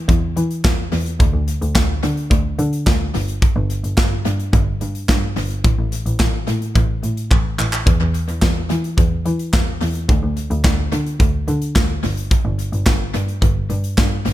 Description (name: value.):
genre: synth-pop.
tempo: 108 BPM.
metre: 4/4.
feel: straight.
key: unclear.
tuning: A4 = 439 Hz.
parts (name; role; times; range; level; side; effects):
clear double bass; bass; 0.1-14.3 s; G1 to E3; -20 LUFS; equal; none.
modern studio drum kit; drums; 0.1-14.3 s; handclaps, hi-hat, kick drum, snare drum; -17 LUFS; equal; tape echo.
room: little or no reverb.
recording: echo-heavy mix.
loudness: -16 LUFS.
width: side -14 dB against mid.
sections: 0.0-14.3 A section.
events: drum fill 7.3-7.9.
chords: none.